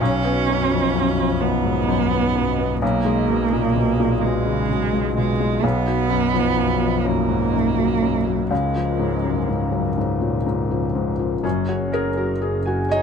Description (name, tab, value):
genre	neoclassical piano and strings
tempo	42 BPM (dotted quarters)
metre	6/8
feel	rubato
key	unclear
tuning	A4 = 441 Hz
part	rich cello	second line	0.0-13.0 s	G#3 to D#4	-22 LUFS	right 7 dB	none
part	felt-muted upright piano	accompaniment	0.0-13.0 s	B1 to D#5	-21 LUFS	left 4 dB	none
part	dark analog pad	sustained chords	0.0-13.0 s	F#3 to D#5	-31 LUFS	right 1 dB	chorus
part	clear double bass	bass	0.0-13.0 s	F#1 to C#2	-27 LUFS	equal	none
part	concert harp	arpeggios	11.4-13.0 s	C#4 to G#5	-29 LUFS	equal	slapback echo
room	light reverb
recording	none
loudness	-18 LUFS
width	side -6 dB against mid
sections	0.0-11.4 A section; 11.4-13.0 B section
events	none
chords	0.0 B; 2.8 G#madd9/B; 5.6 B; 8.5 C#6; 11.4 F#add9